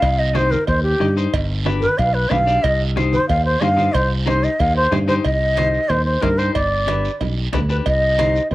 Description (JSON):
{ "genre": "latin, cumbia", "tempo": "184 BPM", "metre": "4/4", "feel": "straight", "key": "C harmonic minor", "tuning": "A4 = 440 Hz", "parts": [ { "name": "breathy bansuri", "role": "melody", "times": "0.0-8.5 s", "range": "G4 to F5", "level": "-18 LUFS", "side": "equal", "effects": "cassette tape, plate reverb" }, { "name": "clean electric guitar", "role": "accompaniment", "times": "0.0-8.4 s", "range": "D4 to Eb5", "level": "-25 LUFS", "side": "left 6 dB", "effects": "cassette tape, plate reverb" }, { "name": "modern bright fingered electric bass", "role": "bass", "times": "0.0-8.5 s", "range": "G1 to G2", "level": "-20 LUFS", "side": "equal", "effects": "none" }, { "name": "bombo", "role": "percussion", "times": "0.0-8.4 s", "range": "none", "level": "-26 LUFS", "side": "left 1 dB", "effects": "none" }, { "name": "cowbell and timbales", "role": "percussion", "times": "0.0-8.5 s", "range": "none", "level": "-28 LUFS", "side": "right 7 dB", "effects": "none" }, { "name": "guiro", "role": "percussion", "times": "0.0-8.5 s", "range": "none", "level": "-35 LUFS", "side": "right 7 dB", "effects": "none" }, { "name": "congas", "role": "percussion", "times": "0.2-8.5 s", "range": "none", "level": "-28 LUFS", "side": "right 5 dB", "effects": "none" } ], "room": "moderate studio reverb, RT60 0.5 s", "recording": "home recording on cassette", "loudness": "-16 LUFS", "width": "side -17 dB against mid", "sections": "0.0-5.2 A section; 5.2-8.5 B section", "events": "bansuri solo 0.0-5.2", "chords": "0.0 Cm; 1.3 G7; 2.6 Cm; 6.6 G; 7.9 Cm" }